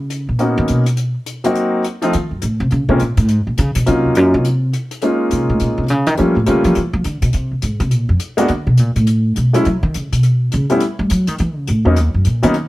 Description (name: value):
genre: jazz piano trio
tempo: 208 BPM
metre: 4/4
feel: swing 62% on 8ths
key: Bb minor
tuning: A4 = 441 Hz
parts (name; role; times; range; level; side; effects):
- upright bass; bass; 0.0-12.7 s; Eb2 to G3; -15 LUFS; equal; none
- hi-hat; drums; 0.1-12.6 s; none; -30 LUFS; left 5 dB; none
- clear grand piano; melody; 0.4-12.5 s; F3 to F#4; -15 LUFS; equal; none
room: little or no reverb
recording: none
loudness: -14 LUFS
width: side -17 dB against mid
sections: 0.0-5.0 A section; 5.0-12.7 A section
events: upright bass solo 0.0-12.7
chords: 0.4 Bmaj7; 1.6 Cm7b5; 2.1 F#dim7; 2.7 Bbm7; 3.9 Ebm7; 4.4 N.C.; 5.0 Db6; 6.2 Gm7b5; 6.8 Cbdim; 7.3 Fm7 (rootless); 8.5 Asus24; 9.1 Asus2; 9.7 Gb5; 10.8 A7; 12.0 Cbmaj7 (rootless)